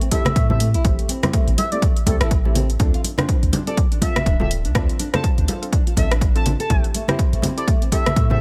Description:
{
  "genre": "afro house",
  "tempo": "123 BPM",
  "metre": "4/4",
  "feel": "swing 58% on 16ths",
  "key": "A minor",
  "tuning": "A4 = 440 Hz",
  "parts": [
    { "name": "nylon-string guitar", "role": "arpeggios", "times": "0.0-8.3 s", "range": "A3 to A4", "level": "-32 LUFS", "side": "equal", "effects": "sidechain pumping, digital delay" },
    { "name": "deep house drum kit", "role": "drums", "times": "0.0-8.3 s", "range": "hi-hat, rim click", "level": "-28 LUFS", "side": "equal", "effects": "overdrive, small room reverb" },
    { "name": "impact", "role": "sound effects", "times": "0.0-0.8 s", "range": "none", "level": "barely audible", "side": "none", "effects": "none" },
    { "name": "expressive synth lead", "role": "melody", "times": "0.1-8.4 s", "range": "A4 to A5", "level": "-30 LUFS", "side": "equal", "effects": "analog chorus, digital delay" },
    { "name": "deep mellow chord stab", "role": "stabs", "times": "0.1-8.4 s", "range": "C4 to C5", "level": "-33 LUFS", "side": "equal", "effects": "chorus, sidechain pumping, digital delay" },
    { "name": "electronic kick drum", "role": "drums", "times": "0.1-8.3 s", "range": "none", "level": "-22 LUFS", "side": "equal", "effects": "overdrive, small room reverb" },
    { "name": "congas", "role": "percussion", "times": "0.1-8.4 s", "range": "none", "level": "-28 LUFS", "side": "equal", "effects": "none" },
    { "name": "warm 808-style bass", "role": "bass", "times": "0.4-8.4 s", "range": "D1 to A2", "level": "-23 LUFS", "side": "equal", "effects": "sidechain pumping" }
  ],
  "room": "digital ambience",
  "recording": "none",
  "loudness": "-19 LUFS",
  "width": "mono",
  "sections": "0.0-8.4 A section",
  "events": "impact 0.0-0.8",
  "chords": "0.0 Am7; 2.8 Dm7; 6.7 Am7",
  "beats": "0.36 | 0.85 1.33 1.82 2.31 | 2.80 3.29 3.77 4.26 | 4.75 5.24 5.72 6.21 | 6.70 7.19 7.68 8.16"
}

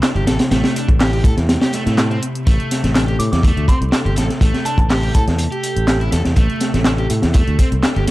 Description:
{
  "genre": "breakbeat, breaks",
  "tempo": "123 BPM",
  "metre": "4/4",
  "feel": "straight",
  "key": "A minor",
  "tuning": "A4 = 440 Hz",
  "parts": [
    { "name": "warbly tape-like pad", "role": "sustained chords", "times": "0.0-8.1 s", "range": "C3 to A4", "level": "-26 LUFS", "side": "equal", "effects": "chorus, built-in reverb, vintage 12-bit sampler grit, sidechain pumping" },
    { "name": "overdriven semi-hollow guitar", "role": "riff", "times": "0.0-8.1 s", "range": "A3 to A4", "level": "-24 LUFS", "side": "equal", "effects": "spring reverb, tape echo" },
    { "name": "crunchy breakbeat drum kit", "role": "drums", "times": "0.0-8.1 s", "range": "hi-hat, kick drum, snare drum", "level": "-16 LUFS", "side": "equal", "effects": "none" },
    { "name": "punchy analog drum machine", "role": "drums", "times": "0.0-8.1 s", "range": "handclaps, hi-hat", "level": "-27 LUFS", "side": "equal", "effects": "none" },
    { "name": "fingered electric bass", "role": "bass", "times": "0.2-8.1 s", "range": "G1 to A2", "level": "-18 LUFS", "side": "equal", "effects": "none" },
    { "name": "soft synth bell", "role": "melody", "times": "3.2-5.5 s", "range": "A5 to D6", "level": "-27 LUFS", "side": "right 1 dB", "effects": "chorus, phaser, old record sound, tape echo" }
  ],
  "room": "small room ambience",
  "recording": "dark, warm production, vinyl crackle",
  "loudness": "-14 LUFS",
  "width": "side -17 dB against mid",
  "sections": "0.0-8.1 A section",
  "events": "none",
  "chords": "0.0 Am7",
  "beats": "0.03 | 0.52 1.00 1.49 1.98 | 2.47 2.95 3.44 3.93 | 4.42 4.91 5.39 5.88 | 6.37 6.86 7.34 7.83"
}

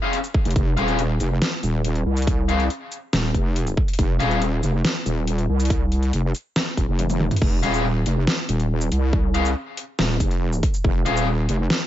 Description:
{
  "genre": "heavy wobble dubstep",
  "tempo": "140 BPM",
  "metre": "4/4",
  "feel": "half-time",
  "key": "F minor",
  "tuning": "A4 = 440 Hz",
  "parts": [
    { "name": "fuzz guitar", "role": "stabs", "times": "0.0-4.4, 7.6-11.3 s", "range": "C4 to F5", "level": "-25 LUFS", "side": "left 3 dB", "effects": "distortion, digital delay" },
    { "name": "dubstep drum kit", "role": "drums", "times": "0.1-11.8 s", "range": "crash cymbal, hi-hat, shaker, snare drum, toms", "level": "-25 LUFS", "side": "equal", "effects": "overdrive" },
    { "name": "electronic kick drum", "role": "drums", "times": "0.3-10.9 s", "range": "none", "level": "-22 LUFS", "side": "equal", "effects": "overdrive" },
    { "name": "wobble bass", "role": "bass", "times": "0.5-11.7 s", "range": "Eb1 to C2", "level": "-21 LUFS", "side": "equal", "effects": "chorus, overdrive" }
  ],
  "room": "little or no reverb",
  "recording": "nothing above 7.8 kHz",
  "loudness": "-19 LUFS",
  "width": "side -12 dB against mid",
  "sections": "0.0-7.4 A section; 7.4-11.9 A section",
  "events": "drop 0.0-7.4, 7.4-11.9; kick drops out 7.0-7.4; drum fill 7.0-7.4",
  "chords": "0.0 F5; 7.4 Fm",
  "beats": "0.13 | 0.56 0.99 1.42 1.84 | 2.27 2.70 3.13 3.56 | 3.99 4.42 4.84 5.27 | 5.70 6.13 6.56 6.99 | 7.42 7.84 8.27 8.70 | 9.13 9.56 9.99 10.42 | 10.85 11.27 11.70"
}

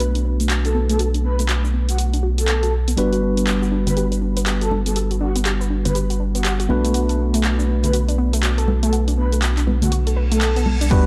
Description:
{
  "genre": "deep house",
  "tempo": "121 BPM",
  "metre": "4/4",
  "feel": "swing 61% on 16ths",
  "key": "B minor",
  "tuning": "A4 = 440 Hz",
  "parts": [
    { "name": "warbly dusty pluck", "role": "arpeggios", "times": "0.0-11.0 s", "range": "A3 to B4", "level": "-29 LUFS", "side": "equal", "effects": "chorus, sidechain pumping" },
    { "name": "bright tine electric piano", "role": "stabs", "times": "0.0-11.1 s", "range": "G3 to B4", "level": "-26 LUFS", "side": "equal", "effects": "lush chorus, sidechain pumping, low-pass filter" },
    { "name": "round analog bass", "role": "bass", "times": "0.0-11.1 s", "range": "G1 to B1", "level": "-22 LUFS", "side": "equal", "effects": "sidechain pumping" },
    { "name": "punchy analog drum machine", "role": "drums", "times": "0.0-11.0 s", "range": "cabasa, crash cymbal, handclaps, hi-hat", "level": "-28 LUFS", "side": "equal", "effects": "none" },
    { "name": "breathy flute-like synth lead", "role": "melody", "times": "0.6-10.7 s", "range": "F#4 to B4", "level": "-30 LUFS", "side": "equal", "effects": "ensemble chorus, cassette tape, digital delay" },
    { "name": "congas", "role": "percussion", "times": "3.9-10.8 s", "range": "none", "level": "-29 LUFS", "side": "equal", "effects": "sidechain pumping on perc" },
    { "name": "reverse cymbal", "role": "sound effects", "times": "10.1-10.9 s", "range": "none", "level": "-34 LUFS", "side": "equal", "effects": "none" },
    { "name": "electronic kick drum", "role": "drums", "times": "10.9-11.0 s", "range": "none", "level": "-16 LUFS", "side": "equal", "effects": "none" }
  ],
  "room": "light reverb",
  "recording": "dark, warm production",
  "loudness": "-19 LUFS",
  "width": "mono",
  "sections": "0.0-10.9 A section",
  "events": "filter sweep on tine electric piano 0.0-10.9; filter sweep on synth pluck 0.0-10.9; reverse cymbal 10.1-10.9",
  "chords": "0.0 Bm7; 3.0 Gmaj7; 6.7 Bm7",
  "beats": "0.00 0.50 | 0.99 1.49 1.98 2.48 | 2.98 3.47 3.97 4.46 | 4.96 5.46 5.95 6.45 | 6.94 7.44 7.93 8.43 | 8.93 9.42 9.92 10.41 | 10.91"
}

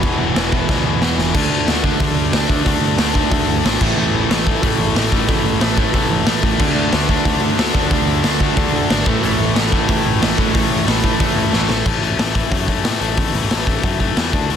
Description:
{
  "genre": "punk rock",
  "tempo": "183 BPM",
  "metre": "4/4",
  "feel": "straight",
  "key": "unclear",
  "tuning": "A4 = 440 Hz",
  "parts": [
    { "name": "crunchy overdriven guitar", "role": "riff", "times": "0.0-11.9 s", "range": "E2 to D4", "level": "-21 LUFS", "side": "right 11 dB", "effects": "none" },
    { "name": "tight distorted guitar", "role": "riff", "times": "0.0-14.6 s", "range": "E2 to D4", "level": "-20 LUFS", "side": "left 12 dB", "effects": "distortion" },
    { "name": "tight distorted guitar", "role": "riff", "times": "0.0-1.2, 6.6-11.7 s", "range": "E2 to D4", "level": "-24 LUFS", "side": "equal", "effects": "distortion" },
    { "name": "picked electric bass", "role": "bass", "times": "0.0-14.6 s", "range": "E1 to A2", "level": "-23 LUFS", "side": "equal", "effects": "none" },
    { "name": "raw garage drum kit", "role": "drums", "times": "0.0-14.6 s", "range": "crash cymbal, hi-hat, kick drum, snare drum", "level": "-18 LUFS", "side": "equal", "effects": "none" }
  ],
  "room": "light reverb",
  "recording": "dense, heavily limited modern master",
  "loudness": "-14 LUFS",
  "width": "side -8 dB against mid",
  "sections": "0.0-1.3 A section; 1.3-11.9 B section; 11.9-14.6 A section",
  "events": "drum fill 0.7-1.3, 11.5-11.9",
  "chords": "0.0 E5; 1.3 D5; 3.8 A5; 6.6 D5; 9.1 A5",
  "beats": "| 0.03 0.36 0.69 1.02 | 1.34 1.67 2.00 2.33 | 2.66 2.99 3.31 3.64 | 3.97 4.30 4.63 4.96 | 5.28 5.61 5.94 6.27 | 6.60 6.93 7.26 7.58 | 7.91 8.24 8.57 8.90 | 9.23 9.56 9.88 10.21 | 10.54 10.87 11.20 11.53 | 11.86 12.19 12.52 12.85 | 13.18 13.51 13.84 14.17 | 14.49"
}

